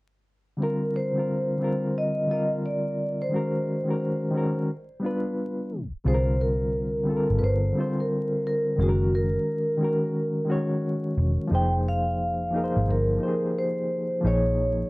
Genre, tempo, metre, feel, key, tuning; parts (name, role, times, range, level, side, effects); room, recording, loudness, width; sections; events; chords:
lo-fi hip hop; 88 BPM; 4/4; swing 66% on 16ths; C minor; A4 = 439 Hz
vibraphone with soft mallets; melody; 0.6-14.9 s; F#4 to G5; -28 LUFS; equal; low-pass filter
reed electric piano; accompaniment; 0.6-14.9 s; D3 to C#5; -26 LUFS; left 1 dB; fast tremolo, cassette tape, low-pass filter
vintage muted picked electric bass; bass; 6.1-14.8 s; E1 to C2; -25 LUFS; equal
moderate small room reverb, RT60 0.5 s; vinyl crackle, tape stop, faint mains hum; -23 LUFS; side -22 dB against mid
0.6-6.1 A section; 6.1-14.9 B section
tape stop 5.7-6.1
0.6 C9sus4; 3.3 F#; 4.7 G7; 6.1 C9sus4; 8.8 F#; 11.5 Fm11; 14.2 Bbm7